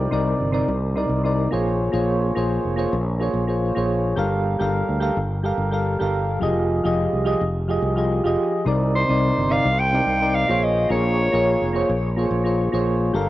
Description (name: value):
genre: sunset chillout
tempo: 107 BPM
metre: 4/4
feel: swing 54% on 16ths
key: unclear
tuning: A4 = 440 Hz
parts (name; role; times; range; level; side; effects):
- soft electric-piano-like synth keys; accompaniment; 0.0-13.3 s; C3 to F5; -21 LUFS; equal; chorus, auto-pan, cassette tape, tape echo
- fretless electric bass; bass; 0.0-13.3 s; F1 to D2; -23 LUFS; equal; none
- growling soprano saxophone; melody; 9.0-12.0 s; C5 to G5; -22 LUFS; equal; cassette tape, analog delay
room: moderate spring reverb, RT60 2.6 s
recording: home recording on cassette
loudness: -19 LUFS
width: side -15 dB against mid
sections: 0.0-13.3 A section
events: none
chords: 0.0 Cm9; 1.7 Bbm9; 4.2 Gm9; 6.4 Fm9; 8.7 Cm9; 10.6 Bbm9